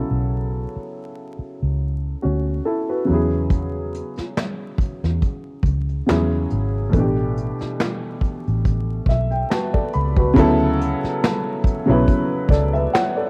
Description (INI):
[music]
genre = R&B, neo-soul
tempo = 70 BPM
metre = 4/4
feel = swing 54% on 16ths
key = unclear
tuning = A4 = 441 Hz
[part]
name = warm upright piano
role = accompaniment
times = 0.0-13.3 s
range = B2 to B5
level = -24 LUFS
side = equal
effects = cassette tape
[part]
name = vintage muted fingered electric bass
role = bass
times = 0.0-12.9 s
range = G#1 to E2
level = -24 LUFS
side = equal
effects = none
[part]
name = vintage brush drum kit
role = drums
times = 3.5-13.2 s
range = handclaps, hi-hat, kick drum, snare drum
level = -24 LUFS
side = equal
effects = cassette tape
[sound]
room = light reverb, studio reverb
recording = home recording on cassette, vinyl crackle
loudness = -21 LUFS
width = mono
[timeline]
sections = 0.0-10.4 A section; 10.4-13.3 B section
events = upright piano fill 8.6-10.4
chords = 0.0 B7sus2; 3.1 E69; 6.9 A9sus4; 10.4 Bm9